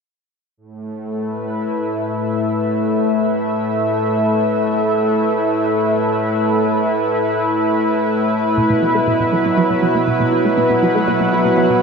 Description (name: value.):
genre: ambient, sequencer-driven space music.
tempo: 120 BPM.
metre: 4/4.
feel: straight.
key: unclear.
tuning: A4 = 437 Hz.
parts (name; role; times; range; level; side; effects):
lush unison pad; sustained chords; 0.6-11.8 s; A2 to F#5; -15 LUFS; equal; chorus.
resonant blip pluck; riff; 8.6-11.7 s; B2 to B3; -20 LUFS; right 1 dB; chorus, phaser, ping-pong delay.
room: wet lush hall reverb, RT60 2.8 s.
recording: dreamy mix soaked in reverb.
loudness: -15 LUFS.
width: side -5 dB against mid.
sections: 0.6-11.8 A section.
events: none.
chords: 0.6 Asus2; 8.6 Bsus4.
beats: | 0.57 1.07 1.57 2.08 | 2.58 3.08 3.58 4.08 | 4.58 5.08 5.58 6.08 | 6.58 7.08 7.58 8.07 | 8.57 9.07 9.57 10.07 | 10.57 11.07 11.57.